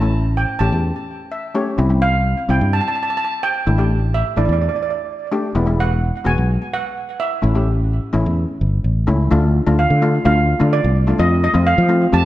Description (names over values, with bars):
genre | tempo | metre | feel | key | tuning
calypso | 127 BPM | 4/4 | straight | D minor | A4 = 440 Hz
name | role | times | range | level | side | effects
steel pan | melody | 0.0-12.2 s | D5 to A5 | -21 LUFS | right 3 dB | digital delay
steel pan | accompaniment | 0.0-12.2 s | G3 to E5 | -21 LUFS | left 2 dB | none
fretless electric bass | bass | 0.0-12.2 s | E1 to F3 | -16 LUFS | equal | none
room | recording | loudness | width
moderate recital hall reverb, RT60 1.6 s | none | -15 LUFS | side -14 dB against mid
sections
0.0-9.3 A section; 9.3-12.2 B section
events
steel pan fill 1.1-1.8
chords
0.0 A; 1.8 C; 3.7 Asus4; 5.6 E; 7.4 A; 9.3 Dm7; 11.2 F